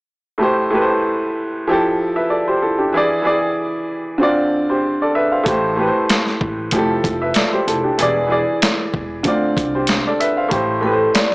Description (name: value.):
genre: hip hop, boom-bap hip-hop.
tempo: 95 BPM.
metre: 4/4.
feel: swing 55% on 16ths.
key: A minor.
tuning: A4 = 439 Hz.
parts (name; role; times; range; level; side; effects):
warm upright piano; accompaniment; 0.4-11.3 s; A2 to F5; -16 LUFS; equal; cassette tape, high-pass filter, low-pass filter.
upright bass; bass; 5.5-11.1 s; E1 to D2; -26 LUFS; equal; none.
boom bap sampler-style drum kit; drums; 5.5-11.3 s; hi-hat, kick drum, snare drum; -18 LUFS; equal; none.
vibraphone with soft mallets; melody; 10.8-11.3 s; A4 to D5; -17 LUFS; equal; high-pass filter, low-pass filter.
room: light reverb, small room ambience.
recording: small speaker sound.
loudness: -15 LUFS.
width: side -25 dB against mid.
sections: 0.4-10.5 A section.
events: none.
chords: 0.4 Am7; 1.7 Fmaj9; 2.9 E7; 4.2 Dm7; 5.5 Am7; 6.7 Fmaj9; 8.0 E7; 9.3 Dm7; 10.5 Am7.